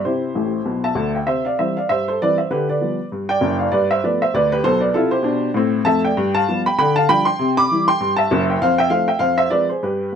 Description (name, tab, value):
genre	jazz, stride piano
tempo	196 BPM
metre	4/4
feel	swing 58% on 8ths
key	C major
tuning	A4 = 440 Hz
part	warm upright piano	solo	0.0-10.2 s	F#1 to D6	-16 LUFS	equal	none
room	light reverb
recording	none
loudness	-16 LUFS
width	side -7 dB against mid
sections	0.0-1.3 A section; 1.3-10.2 B section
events	upright piano fill 0.4-1.3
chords	0.0 C; 2.5 G7/D; 3.7 G9; 4.9 C; 6.2 G7; 6.8 G5/D; 7.4 C; 8.6 F; 9.2 Fm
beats	| 0.05 0.35 0.66 0.97 | 1.27 1.58 1.89 2.19 | 2.50 2.81 3.11 3.42 | 3.72 4.03 4.33 4.64 | 4.95 5.25 5.56 5.86 | 6.17 6.47 6.78 7.08 | 7.38 7.69 7.99 8.30 | 8.60 8.90 9.21 9.51 | 9.82 10.12